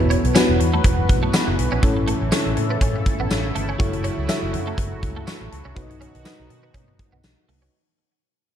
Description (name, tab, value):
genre	1980s-style pop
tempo	122 BPM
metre	4/4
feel	swing 55% on 16ths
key	unclear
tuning	A4 = 440 Hz
part	mellow FM electric piano	accompaniment	0.0-7.8 s	B3 to C#6	-25 LUFS	left 2 dB	chorus
part	sweeping resonant pad	sustained chords	0.0-7.7 s	B2 to B4	-28 LUFS	left 1 dB	chorus
part	twelve-string electric guitar	riff	0.0-7.7 s	F#3 to D#4	-30 LUFS	right 5 dB	ensemble chorus, digital delay
part	vintage muted fingered electric bass	bass	0.0-7.7 s	E1 to B2	-24 LUFS	equal	none
part	huge arena drum kit	drums	0.1-7.6 s	hi-hat, kick drum, snare drum, tambourine	-22 LUFS	equal	none
room	light reverb, studio reverb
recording	dark, warm production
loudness	-18 LUFS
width	side -10 dB against mid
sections	0.0-7.7 A section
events	fade-out 0.0-7.7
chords	0.0 Esus2; 1.8 A; 3.8 F#m7; 5.8 B